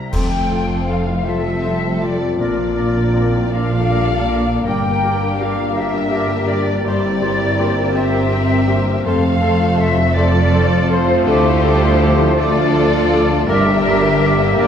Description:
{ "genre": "cinematic, emotional film score for orchestra", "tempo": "54 BPM (dotted quarters)", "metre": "6/8", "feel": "rubato", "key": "unclear", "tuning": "A4 = 440 Hz", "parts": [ { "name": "muted studio violin section", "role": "melody", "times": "0.0-14.7 s", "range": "C5 to Bb5", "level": "-24 LUFS", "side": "left 4 dB", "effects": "none" }, { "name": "large flute ensemble", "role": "second line", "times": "0.0-14.7 s", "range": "C5 to G5", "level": "-23 LUFS", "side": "left 1 dB", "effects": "none" }, { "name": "felt-muted upright piano", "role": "accompaniment", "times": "0.0-14.7 s", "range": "C2 to Bb4", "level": "-22 LUFS", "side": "left 2 dB", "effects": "none" }, { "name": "muted symphonic violin section", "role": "second line", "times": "0.1-14.7 s", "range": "F4 to D5", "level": "-25 LUFS", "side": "left 2 dB", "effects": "none" }, { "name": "warm clarinet", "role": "second line", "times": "0.1-14.7 s", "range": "G4 to Bb4", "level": "-26 LUFS", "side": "left 2 dB", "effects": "none" }, { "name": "warm oboe", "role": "second line", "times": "0.1-14.7 s", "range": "C5 to D5", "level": "-28 LUFS", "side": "right 1 dB", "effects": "none" }, { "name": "muted studio viola section", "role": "accompaniment", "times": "0.1-14.7 s", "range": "F3 to F4", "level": "-23 LUFS", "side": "equal", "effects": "none" }, { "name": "clear French horn section", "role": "sustained chords", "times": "0.1-14.7 s", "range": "F3 to G4", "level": "-24 LUFS", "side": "left 1 dB", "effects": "none" }, { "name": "muted symphonic cello section", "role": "bass", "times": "0.1-14.7 s", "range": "D2 to Bb2", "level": "-23 LUFS", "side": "right 2 dB", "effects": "none" }, { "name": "muted symphonic double bass section", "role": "bass", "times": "0.1-14.7 s", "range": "F1 to D2", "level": "-21 LUFS", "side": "right 2 dB", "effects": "none" }, { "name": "clash cymbals and concert bass drum", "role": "percussion", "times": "0.1-1.6 s", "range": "none", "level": "-25 LUFS", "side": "equal", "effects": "none" }, { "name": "timpani", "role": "percussion", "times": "13.5-14.6 s", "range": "G2", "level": "-26 LUFS", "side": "right 1 dB", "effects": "none" } ], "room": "wet scoring stage reverb, RT60 1.8 s", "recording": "heard from further back in the room", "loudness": "-14 LUFS", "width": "side -8 dB against mid", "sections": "0.1-14.7 A section", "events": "band accent 0.1-0.9", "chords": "0.1 F; 2.4 Bb; 4.7 Gm; 6.9 C/G; 9.1 F; 11.3 Dm; 13.5 Gm", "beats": "| 0.13 1.26 | 2.40 3.52 | 4.66 5.77 | 6.87 7.96 | 9.07 10.17 | 11.28 12.38 | 13.49 14.60" }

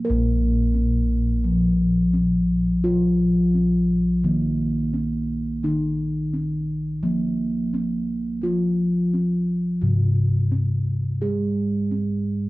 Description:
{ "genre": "Javanese gamelan", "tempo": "86 BPM", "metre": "4/4", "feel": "straight", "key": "Bb slendro", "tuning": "A4 = 438 Hz", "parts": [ { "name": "gamelan-type bronze metallophone", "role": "accompaniment", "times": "0.0-12.5 s", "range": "C3+40c to Bb3", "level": "-21 LUFS", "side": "equal", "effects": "none" }, { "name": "gamelan-type bossed gongs", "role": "bass", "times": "0.0-12.5 s", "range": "Bb1 to Bb4", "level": "-24 LUFS", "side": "equal", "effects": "none" } ], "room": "wet recital hall reverb, RT60 1.6 s", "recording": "dark, warm production", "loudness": "-20 LUFS", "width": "side -20 dB against mid", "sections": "0.0-12.5 A section", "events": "none", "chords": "none", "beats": "| 0.05 0.75 1.44 2.14 | 2.84 3.54 4.23 4.93 | 5.63 6.33 7.03 7.72 | 8.42 9.12 9.82 10.51 | 11.21 11.91" }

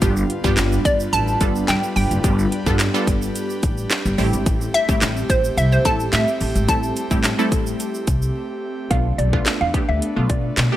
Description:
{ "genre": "dance-pop", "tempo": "108 BPM", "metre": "4/4", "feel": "straight", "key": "A minor", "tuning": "A4 = 438 Hz", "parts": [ { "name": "wide unison pluck", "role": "accompaniment", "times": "0.0-10.8 s", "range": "G3 to A4", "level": "-24 LUFS", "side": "equal", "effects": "phaser, sidechain pumping" }, { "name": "airy breathy pad", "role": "sustained chords", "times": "0.0-10.8 s", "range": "G3 to B4", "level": "-28 LUFS", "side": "equal", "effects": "chorus, sidechain pumping" }, { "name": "upright bass", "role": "bass", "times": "0.0-10.7 s", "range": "F#1 to B2", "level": "-21 LUFS", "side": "equal", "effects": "sidechain pumping" }, { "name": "house drum kit", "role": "drums", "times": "0.0-10.7 s", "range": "handclaps, hi-hat, kick drum, snare drum", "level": "-21 LUFS", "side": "equal", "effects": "none" }, { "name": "tube shaker", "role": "percussion", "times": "0.0-8.3 s", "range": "none", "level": "-36 LUFS", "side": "right 5 dB", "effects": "none" }, { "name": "hollow square pluck", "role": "melody", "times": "0.9-8.3 s", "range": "C5 to A5", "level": "-22 LUFS", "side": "equal", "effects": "chorus, tape echo" }, { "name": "mallet-like synth pluck", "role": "melody", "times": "8.9-10.5 s", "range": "D5 to F5", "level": "-26 LUFS", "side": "right 2 dB", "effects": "chorus, phaser, sidechain pumping" } ], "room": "digital ambience", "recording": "none", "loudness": "-17 LUFS", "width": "side -13 dB against mid", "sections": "0.0-8.9 A section; 8.9-10.8 B section", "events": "break 8.4-8.9", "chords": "0.0 G7; 4.2 Am7; 8.9 Bm7b5", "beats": "| 0.02 0.57 1.13 1.68 | 2.24 2.80 3.35 3.91 | 4.46 5.02 5.57 6.13 | 6.68 7.24 7.80 8.35 | 8.91 9.46 10.02 10.57" }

